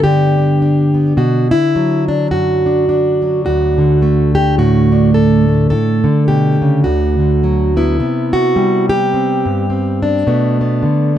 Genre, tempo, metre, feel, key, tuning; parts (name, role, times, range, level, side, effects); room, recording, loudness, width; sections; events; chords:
folk, solo fingerstyle acoustic guitar; 106 BPM; 4/4; swing 59% on 8ths; D major; A4 = 440 Hz
fingerpicked plugged-in steel-string acoustic guitar; solo; 0.0-11.2 s; D2 to A4; -11 LUFS; equal
light reverb; -11 LUFS; side -10 dB against mid
0.0-8.0 A section; 8.0-11.2 B section
0.0 Gadd9; 1.2 Bm; 3.5 D; 5.7 Asus4; 6.9 D6; 8.0 Cmaj7; 10.3 Bm7